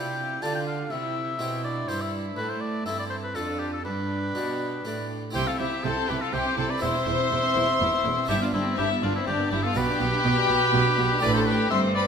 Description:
classical, baroque-style concerto movement with solo episodes; 123 BPM; 3/4; straight; C major; A4 = 440 Hz
clear oboe; melody; 0.0-12.1 s; E4 to A5; -29 LUFS; left 2 dB
warm chamber violin section; melody; 0.0-12.1 s; C5 to C6; -31 LUFS; left 3 dB
rich chamber violin section; second line; 0.0-12.1 s; C4 to C5; -30 LUFS; left 2 dB
harpsichord; accompaniment; 0.0-12.1 s; E2 to A4; -33 LUFS; right 1 dB
warm chamber viola section; accompaniment; 0.0-12.1 s; B3 to E4; -33 LUFS; right 1 dB
rich chamber cello section; bass; 0.0-12.1 s; E2 to D3; -31 LUFS; right 3 dB
rich chamber double bass section; bass; 5.3-12.1 s; E1 to C2; -31 LUFS; right 5 dB
wet recital hall reverb, RT60 1.8 s; minimal, uncompressed stereo recording; -23 LUFS; side -6 dB against mid
0.0-5.3 A section; 5.3-12.1 B section
0.0 G7; 0.9 C; 2.4 Am; 3.4 Dm/F; 3.8 G; 5.3 C; 6.8 C/E; 8.3 G; 9.8 G/B; 11.2 Am

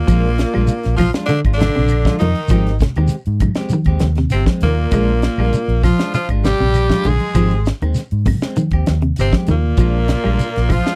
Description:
afrobeat; 99 BPM; 4/4; straight; Bb mixolydian; A4 = 440 Hz
raspy tenor saxophone; melody; 0.0-11.0 s; Bb3 to Ab4; -25 LUFS; equal
clear tenor saxophone; second line; 0.0-11.0 s; Bb2 to Ab3; -27 LUFS; equal
raspy baritone saxophone; second line; 0.0-11.0 s; Bb2 to Ab3; -30 LUFS; equal
clean electric guitar; arpeggios; 0.1-10.9 s; C3 to Ab3; -23 LUFS; equal; subtle chorus
clean electric guitar; stabs; 0.1-11.0 s; Eb3 to G4; -29 LUFS; equal
vintage muted fingered electric bass; bass; 0.1-10.8 s; G1 to Ab2; -20 LUFS; equal
tight funk drum kit; drums; 0.1-11.0 s; hi-hat, kick drum, snare drum; -21 LUFS; equal
claves; percussion; 0.1-10.9 s; -40 LUFS; equal
shekere; percussion; 0.1-10.9 s; -23 LUFS; equal
congas; percussion; 1.0-10.9 s; -24 LUFS; equal
light reverb; dry, close 1970s-style studio recording; -16 LUFS; mono
0.0-11.0 A section
0.1 Bb7; 2.5 Abmaj7; 4.9 Bb7; 7.4 Abmaj7; 9.8 Bb7

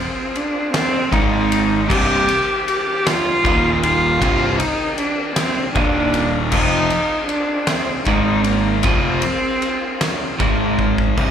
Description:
quiet-loud alternative rock; 52 BPM (dotted quarters); 6/8; straight; A4 = 440 Hz
warm cello; melody; 0.0-10.4 s; Bb3 to G4; -20 LUFS; equal; slapback echo, tape echo
percussive tonewheel organ; sustained chords; 0.0-11.2 s; Eb3 to F5; -31 LUFS; equal
oversized low-tuned drum kit; drums; 0.4-11.3 s; crash cymbal, kick drum, ride cymbal, snare drum; -22 LUFS; left 1 dB
fuzz guitar; riff; 1.1-11.3 s; C2 to Ab3; -23 LUFS; left 10 dB; distortion, slapback echo
overdriven electric guitar; riff; 1.1-11.3 s; C2 to Ab3; -21 LUFS; right 12 dB; slapback echo
overdriven picked electric bass; bass; 1.1-11.3 s; C1 to Ab1; -23 LUFS; left 1 dB
fingerpicked swing-style acoustic guitar; arpeggios; 11.2-11.3 s; G2 to Eb4; -26 LUFS; left 2 dB
light reverb; live gig heard through the venue's PA, club reverb; -15 LUFS; side -8 dB against mid
0.0-11.2 A section
drum fill 10.8-11.2
0.0 Fm; 1.1 Ab5; 1.9 Cm; 3.4 Eb5; 4.2 Cm; 5.8 Eb5; 6.5 Fm7; 8.1 Ab5; 8.9 Fm; 10.4 Ab5

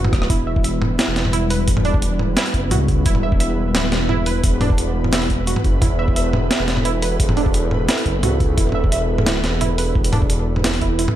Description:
half-time drum and bass; 174 BPM; 4/4; half-time; E minor; A4 = 440 Hz
dark analog pad; sustained chords; 0.0-11.2 s; G3 to A4; -26 LUFS; left 1 dB; chorus, sidechain pumping
warbly dusty pluck; arpeggios; 0.0-11.1 s; D4 to E5; -26 LUFS; right 5 dB; chorus, dub echo
dark detuned saw bass; bass; 0.0-11.1 s; D1 to C#2; -21 LUFS; equal
boom bap sampler-style drum kit; drums; 0.0-11.1 s; hi-hat, rim click, snare drum, toms; -22 LUFS; equal
flickering grainy texture; texture; 0.0-11.2 s; B4; -29 LUFS; right 3 dB; built-in reverb
electronic kick drum; drums; 0.1-10.9 s; -18 LUFS; equal
little or no reverb; -16 LUFS; side -12 dB against mid
0.0-11.2 A section
drum fill 0.1
0.0 Em

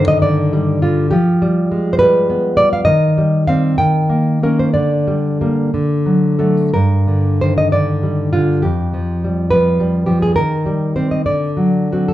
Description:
romantic piece for solo classical guitar; 57-72 BPM (dotted quarters); 6/8; rubato; G minor; A4 = 440 Hz
nylon-string guitar; solo; 0.0-12.1 s; F2 to G5; -13 LUFS; equal
moderate large studio reverb, RT60 1.4 s; band playing live in one room; -13 LUFS; side -14 dB against mid
0.0-12.1 A section
0.0 G5; 1.1 G7/F; 2.9 Cm/Eb; 3.8 Eb7; 4.7 Gm/D; 5.7 D; 6.7 Gm; 8.6 G7/F; 10.4 Cm/Eb; 11.3 D7

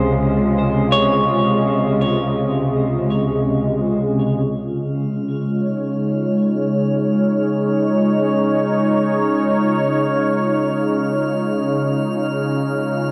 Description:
ambient; free time; Db major; A4 = 440 Hz
warm analog pad; sustained chords; 0.0-13.1 s; C3 to Eb5; -19 LUFS; equal; chorus
clean electric guitar; arpeggios; 0.0-4.2 s; C5 to Db5; -25 LUFS; equal; harmonic tremolo, tape echo
clear symphonic cello section; bass; 0.0-4.4 s; Db2; -29 LUFS; equal; tube saturation
drifting glass-harmonics texture; texture; 5.2-13.1 s; F6; -37 LUFS; equal; chorus, built-in reverb
wet cathedral reverb, RT60 5.2 s; -19 LUFS; mono
0.0-4.5 A section; 4.5-13.1 B section
fade-in on synth texture 4.5-13.1
0.0 Dbmaj9; 4.5 Dbadd9

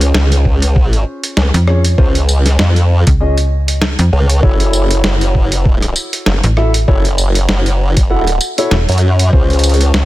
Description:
glitch hop; 98 BPM; 4/4; swing 56% on 16ths; A4 = 438 Hz
dark grand piano; stabs; 0.0-10.1 s; C#4 to F#5; -19 LUFS; equal; sidechain pumping, digital delay
formant-sweep wobble bass; bass; 0.0-10.1 s; F#1 to F#2; -12 LUFS; equal; chorus
boom bap sampler-style drum kit; drums; 0.0-10.1 s; hi-hat, rim click, snare drum, tambourine; -18 LUFS; right 1 dB
electronic kick drum; drums; 0.5-9.5 s; -13 LUFS; equal
slap-like FM bass; bass; 1.5-8.9 s; E1 to E#2; -12 LUFS; equal
digital ambience; dense, heavily limited modern master; -10 LUFS; side -16 dB against mid
0.0-10.1 A section
0.0 C#maj7; 4.4 F#m7; 9.3 C#maj7

